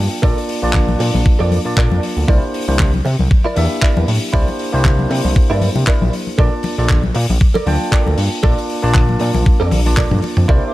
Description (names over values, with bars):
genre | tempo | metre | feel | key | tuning
nu-disco, nu disco | 117 BPM | 4/4 | swing 56% on 16ths | unclear | A4 = 445 Hz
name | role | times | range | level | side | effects
bell-like tine electric piano | accompaniment | 0.0-10.7 s | Bb3 to A5 | -22 LUFS | equal | low-pass filter, tape echo
fat analog bass | bass | 0.0-10.6 s | Bb1 to C3 | -16 LUFS | equal | tube saturation
direct-recorded clean electric guitar | riff | 0.2-10.6 s | E4 to D5 | -23 LUFS | right 3 dB | ensemble chorus, tape echo
electronic kick drum | drums | 0.2-10.6 s | none | -14 LUFS | equal | none
damped 70s drum kit | drums | 0.4-10.5 s | handclaps, hi-hat, toms | -24 LUFS | left 1 dB | none
congas | percussion | 0.7-10.3 s | none | -23 LUFS | left 3 dB | none
lush unison pad | sustained chords | 10.6-10.7 s | Bb4 to D6 | -26 LUFS | right 3 dB | chorus, phaser, sidechain pumping
room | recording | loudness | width
studio reverb | dark, warm production | -13 LUFS | side -16 dB against mid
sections
0.0-10.7 A section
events
filter sweep on tine electric piano 0.0-10.7; drum fill 9.7-10.5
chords
0.0 Bbmaj7; 2.3 C9; 6.4 Bbmaj7